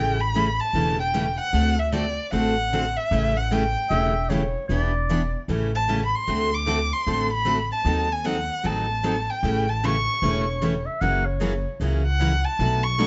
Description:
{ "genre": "acoustic string swing (jazz manouche)", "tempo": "152 BPM", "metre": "4/4", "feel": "swing 62% on 8ths", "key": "A mixolydian", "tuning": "A4 = 439 Hz", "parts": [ { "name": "warm violin", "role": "melody", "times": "0.0-13.1 s", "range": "D5 to D6", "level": "-27 LUFS", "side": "equal", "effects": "none" }, { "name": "picked steel-string acoustic guitar", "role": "accompaniment", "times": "0.0-13.1 s", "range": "B2 to A4", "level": "-30 LUFS", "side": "equal", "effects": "none" }, { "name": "picked steel-string acoustic guitar", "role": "accompaniment", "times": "0.0-13.1 s", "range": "B2 to B4", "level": "-33 LUFS", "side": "equal", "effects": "none" }, { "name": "upright bass", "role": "bass", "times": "0.0-13.1 s", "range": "E1 to D#2", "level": "-28 LUFS", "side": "equal", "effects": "none" }, { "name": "breathy clarinet", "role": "second line", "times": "3.9-5.4, 10.2-11.9 s", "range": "C#5 to F#5", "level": "-30 LUFS", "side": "equal", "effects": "none" } ], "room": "light reverb", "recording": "nothing above 7.8 kHz", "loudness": "-23 LUFS", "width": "mono", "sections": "0.0-13.1 A section", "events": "none", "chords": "0.0 A7; 1.5 D7; 3.1 A7; 4.7 Em7; 5.5 A7; 6.3 D7; 7.9 D#dim7; 9.4 A7; 11.0 F#7" }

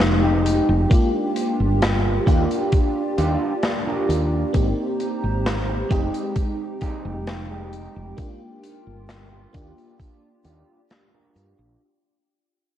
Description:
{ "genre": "vaporwave", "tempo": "66 BPM", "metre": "4/4", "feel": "straight", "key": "unclear", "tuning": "A4 = 440 Hz", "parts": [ { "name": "FM electric piano with soft pad layer", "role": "accompaniment", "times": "0.0-11.8 s", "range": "Ab3 to G4", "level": "-26 LUFS", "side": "equal", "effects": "ensemble chorus, analog delay" }, { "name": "warbly tape-like pad", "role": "sustained chords", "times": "0.0-11.8 s", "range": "Ab3 to Bb5", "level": "-29 LUFS", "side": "left 1 dB", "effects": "chorus, built-in reverb" }, { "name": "woody fretless electric bass", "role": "bass", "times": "0.0-11.8 s", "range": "F1 to G2", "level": "-23 LUFS", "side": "equal", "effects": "tube saturation" }, { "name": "big rock drum kit", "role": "drums", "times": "0.0-11.5 s", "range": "hi-hat, snare drum", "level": "-26 LUFS", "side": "left 1 dB", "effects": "none" }, { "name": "mellow electric guitar", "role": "riff", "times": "0.2-11.8 s", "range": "Ab3 to Bb4", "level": "-28 LUFS", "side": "right 2 dB", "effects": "lush chorus, low-pass filter, analog delay" }, { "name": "electronic kick drum", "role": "drums", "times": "0.9-10.2 s", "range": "none", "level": "-20 LUFS", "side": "equal", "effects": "none" } ], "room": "moderate concert hall reverb, RT60 2.2 s", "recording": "cassette tape", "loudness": "-19 LUFS", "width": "side -11 dB against mid", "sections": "0.0-11.8 A section", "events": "fade-out 0.0-11.8; filter sweep on clean electric guitar 0.0-11.8", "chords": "0.0 Fm9; 0.9 Gm7; 2.3 Ebmaj9; 4.5 Abmaj9; 5.9 Fm9; 8.2 Gm7; 9.5 Ebmaj9" }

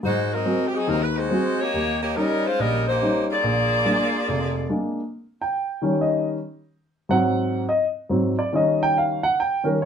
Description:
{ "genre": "jazz", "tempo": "142 BPM", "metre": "4/4", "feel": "swing 66% on 8ths", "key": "Eb mixolydian", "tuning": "A4 = 441 Hz", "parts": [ { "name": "edgy saxophone section", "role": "melody", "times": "0.0-4.7 s", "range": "Gb3 to D5", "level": "-22 LUFS", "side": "left 1 dB", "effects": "none" }, { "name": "warm baby grand piano", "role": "accompaniment", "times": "0.0-9.9 s", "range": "F1 to G5", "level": "-21 LUFS", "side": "equal", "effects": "none" } ], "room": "wet studio ambience, RT60 0.5 s", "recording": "band playing live in one room", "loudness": "-20 LUFS", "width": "side -7 dB against mid", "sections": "0.0-5.1 A section; 5.1-9.9 B section", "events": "grand piano solo 5.1-9.9", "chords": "0.0 Ab7; 1.7 Eb7; 3.4 Bb7; 5.1 Eb7; 6.8 Ab7; 8.5 Eb7" }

